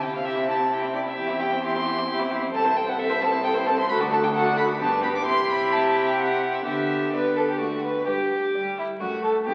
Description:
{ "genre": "quick classical-period movement for string quartet", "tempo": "132 BPM", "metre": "3/4", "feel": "rubato", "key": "G major", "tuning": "A4 = 440 Hz", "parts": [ { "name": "warm violin", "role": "melody", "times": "0.0-9.4 s", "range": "D5 to D6", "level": "-28 LUFS", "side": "equal", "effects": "none" }, { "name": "rich violin", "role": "second line", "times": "0.0-9.5 s", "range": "E4 to C5", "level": "-28 LUFS", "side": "equal", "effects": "none" }, { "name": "warm viola", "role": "accompaniment", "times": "0.0-9.5 s", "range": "G3 to F#4", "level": "-32 LUFS", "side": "equal", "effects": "none" }, { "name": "rich cello", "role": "bass", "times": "0.0-9.5 s", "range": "C2 to D3", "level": "-33 LUFS", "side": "equal", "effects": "none" } ], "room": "wet recital hall reverb, RT60 1.9 s", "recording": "very old 78 rpm record, vinyl crackle", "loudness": "-24 LUFS", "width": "mono", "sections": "0.0-8.1 A section; 8.1-9.5 B section", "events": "none", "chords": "0.0 C; 1.2 C/E; 2.5 Am/C; 3.9 D; 4.8 G; 5.3 C; 6.7 G/D; 7.6 D; 8.1 G5; 9.0 D/F#", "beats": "0.26 0.71 | 1.17 1.64 2.09 | 2.54 2.99 3.44 | 3.89 4.34 4.80 | 5.25 5.71 6.18 | 6.65 7.13 7.61 | 8.09 8.55 9.02 | 9.47" }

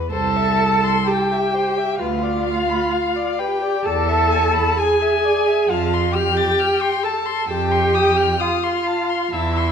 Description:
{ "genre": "classical, slow romantic movement for string quartet", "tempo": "65 BPM", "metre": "4/4", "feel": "rubato", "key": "unclear", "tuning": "A4 = 441 Hz", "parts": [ { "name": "muted violin", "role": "melody", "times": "0.0-9.7 s", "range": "B4 to A6", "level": "-25 LUFS", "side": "left 9 dB", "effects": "none" }, { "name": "muted violin", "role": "second line", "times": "0.1-9.7 s", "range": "E5 to A5", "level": "-23 LUFS", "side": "left 3 dB", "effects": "none" }, { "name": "muted viola", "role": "accompaniment", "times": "0.1-9.7 s", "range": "E4 to A4", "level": "-20 LUFS", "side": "right 2 dB", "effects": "none" }, { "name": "muted cello", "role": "bass", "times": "0.1-9.7 s", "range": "C2 to F2", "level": "-24 LUFS", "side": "right 3 dB", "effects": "none" } ], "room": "wet recital hall reverb, RT60 1.5 s", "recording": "minimal, uncompressed stereo recording", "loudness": "-16 LUFS", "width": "side -7 dB against mid", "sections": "0.0-9.7 A section", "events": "none", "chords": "0.1 Am/C; 2.0 Bdim/D; 3.9 E7; 5.7 F; 7.5 F7", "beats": "| 0.12 1.07 2.00 2.92 | 3.85 4.78 5.70 6.58 | 7.50 8.40 9.32" }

